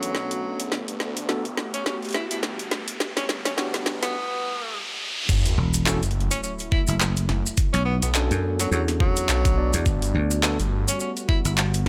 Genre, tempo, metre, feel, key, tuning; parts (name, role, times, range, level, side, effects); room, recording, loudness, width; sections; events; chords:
glitch hop; 105 BPM; 4/4; swing 57% on 16ths; F# phrygian; A4 = 440 Hz
clear tenor saxophone; melody; 0.0-11.5 s; F#3 to E4; -33 LUFS; equal; dub echo
warbly tape-like pad; sustained chords; 0.0-11.9 s; D3 to G4; -38 LUFS; equal; chorus, built-in reverb, sidechain pumping
overdriven tine electric piano; stabs; 0.0-10.6 s; B3 to D5; -32 LUFS; equal; sidechain pumping, low-pass filter, dub echo
phased detuned saw bass; bass; 0.0-11.9 s; E1 to E2; -30 LUFS; equal; phaser, tube saturation, high-pass filter
drum and bass drum kit; drums; 0.0-11.9 s; crash cymbal, handclaps, hi-hat, snare drum; -29 LUFS; equal; overdrive, studio reverb
riser and sub drop; sound effects; 0.5-7.6 s; -35 LUFS; equal
electronic kick drum; drums; 5.3-11.4 s; -24 LUFS; equal; overdrive, studio reverb
maracas; percussion; 5.3-11.8 s; -34 LUFS; equal
dry thumbed slap bass; bass; 5.6-11.8 s; E1 to F#2; -26 LUFS; equal
digital ambience; high-pass filter; -24 LUFS; mono
0.0-5.3 A section; 5.3-11.9 B section
build-up 0.0-5.3; drum fill 0.0-4.1; filter sweep on tine electric piano 0.0-5.3; filter sweep 0.0-5.3; riser 0.5-5.3; drop 5.3-11.9; impact 5.3-7.6
0.0 Bm9; 0.7 Gmaj9; 3.0 Em7; 5.3 F#m7; 7.6 Bm9; 9.9 Gmaj9